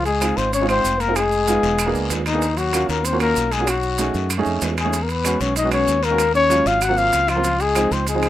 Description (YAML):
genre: Afro-Cuban jazz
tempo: 191 BPM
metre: 4/4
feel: straight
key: Db major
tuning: A4 = 440 Hz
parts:
  - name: breathy trumpet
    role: melody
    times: 0.0-8.3 s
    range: Eb4 to Gb5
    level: -20 LUFS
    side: left 3 dB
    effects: none
  - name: breathy trombone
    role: second line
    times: 0.0-8.3 s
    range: Eb3 to Gb4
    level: -26 LUFS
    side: left 4 dB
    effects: none
  - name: modern bright fingered electric bass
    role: bass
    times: 0.0-8.3 s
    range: Fb1 to Gb2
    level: -25 LUFS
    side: equal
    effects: none
  - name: maracas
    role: percussion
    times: 0.1-8.3 s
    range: none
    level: -30 LUFS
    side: right 7 dB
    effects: none
  - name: timbales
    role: percussion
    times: 0.1-8.3 s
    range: none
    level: -31 LUFS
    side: right 6 dB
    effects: none
  - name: warm baby grand piano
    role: accompaniment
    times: 0.2-8.3 s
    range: F3 to G#4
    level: -24 LUFS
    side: right 4 dB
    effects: none
  - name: claves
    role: percussion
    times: 0.2-8.3 s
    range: none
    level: -31 LUFS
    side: right 8 dB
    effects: none
  - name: guiro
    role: percussion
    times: 0.2-8.3 s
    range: none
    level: -32 LUFS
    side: left 9 dB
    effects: none
room: light reverb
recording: rough home demo mix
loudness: -17 LUFS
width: side -13 dB against mid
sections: 0.0-8.3 A section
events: none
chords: 0.0 Dbmaj9; 1.2 Fm7b5; 1.8 E7#11; 2.4 Ebm9; 3.7 Cb13; 4.9 E6; 6.2 Ebm11; 6.8 Ab13; 7.4 Dbmaj9